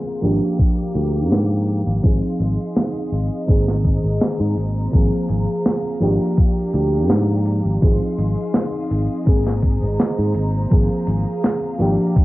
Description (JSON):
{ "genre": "vaporwave", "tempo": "83 BPM", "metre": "4/4", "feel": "swing 53% on 16ths", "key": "Ab lydian", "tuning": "A4 = 440 Hz", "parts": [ { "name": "mellow FM electric piano", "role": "accompaniment", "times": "0.0-12.2 s", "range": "Eb3 to Ab4", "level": "-21 LUFS", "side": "equal", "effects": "wide subtle chorus, cassette tape, tape echo" }, { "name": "clear studio string section", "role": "sustained chords", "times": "0.0-12.2 s", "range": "G4 to D6", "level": "-34 LUFS", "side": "left 1 dB", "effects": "vintage 12-bit sampler grit, low-pass filter, cassette tape" }, { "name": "fretless electric bass", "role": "bass", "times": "0.2-12.0 s", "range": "Ab1 to Ab2", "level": "-20 LUFS", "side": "equal", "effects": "none" }, { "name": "modern studio drum kit", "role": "drums", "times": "0.2-12.2 s", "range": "cabasa, hi-hat, snare drum", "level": "-21 LUFS", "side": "equal", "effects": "cassette tape" }, { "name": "electronic kick drum", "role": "drums", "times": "0.6-12.2 s", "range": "none", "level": "-16 LUFS", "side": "equal", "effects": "cassette tape" } ], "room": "moderate studio ambience, RT60 0.5 s", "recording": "home recording on cassette, low-pass filter", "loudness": "-16 LUFS", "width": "side -18 dB against mid", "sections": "0.0-12.2 A section", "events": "filter sweep on string section 0.0-12.2; filter sweep 0.0-12.2", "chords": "0.2 Gm7/Ab; 2.0 Fm7/Ab; 3.5 Bb9sus4/Ab; 4.9 Ab69; 6.0 Gm7/Ab; 7.8 Fm7/Ab; 9.3 Bb9sus4/Ab; 10.7 Ab69" }